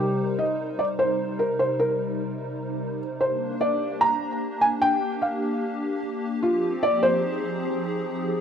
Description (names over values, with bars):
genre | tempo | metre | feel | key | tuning
IDM | 149 BPM | 4/4 | straight | C minor | A4 = 439 Hz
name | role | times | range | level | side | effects
felt-muted upright piano | melody | 0.0-8.4 s | F4 to Bb5 | -24 LUFS | equal | digital delay
hollow soft pad | sustained chords | 0.0-8.4 s | C3 to C5 | -27 LUFS | equal | ensemble chorus
room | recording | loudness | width
light reverb | rough home demo mix | -22 LUFS | side -8 dB against mid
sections
0.0-8.4 A section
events
none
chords
0.0 Cm7; 3.2 Gm; 6.4 Fm7